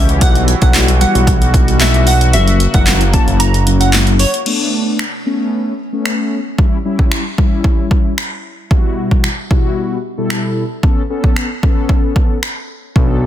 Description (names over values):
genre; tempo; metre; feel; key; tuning
dance-pop; 113 BPM; 4/4; straight; unclear; A4 = 442 Hz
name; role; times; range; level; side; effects
glassy wavetable pluck; melody; 0.0-4.3 s; C#5 to A#5; -19 LUFS; right 1 dB; chorus, digital delay
sweeping resonant pad; sustained chords; 0.0-4.4 s; C#3 to G4; -22 LUFS; right 1 dB; chorus, sidechain pumping
fat analog bass; bass; 0.0-4.3, 13.0-13.3 s; F#1 to C#2; -13 LUFS; equal; sidechain pumping
punchy analog drum machine; drums; 0.1-13.1 s; crash cymbal, finger snaps, handclaps, hi-hat, kick drum, snare drum; -14 LUFS; equal; overdrive
mellow synth brass; accompaniment; 0.2-13.3 s; B2 to A4; -19 LUFS; left 2 dB; chorus
room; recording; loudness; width
little or no reverb; dense, heavily limited modern master; -11 LUFS; side -11 dB against mid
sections
0.0-4.5 A section; 4.5-13.3 B section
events
drop 0.0-4.5; kick muted 3.4-4.5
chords
0.2 Emadd9/B; 2.3 F#; 4.5 Bm7; 6.6 C#dim; 8.7 Emadd9/B; 10.8 Aadd9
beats
| 0.21 0.74 1.27 1.81 | 2.34 2.87 3.40 3.93 | 4.46 4.99 5.52 6.05 | 6.58 7.12 7.65 8.18 | 8.71 9.24 9.77 10.30 | 10.83 11.36 11.89 12.43 | 12.96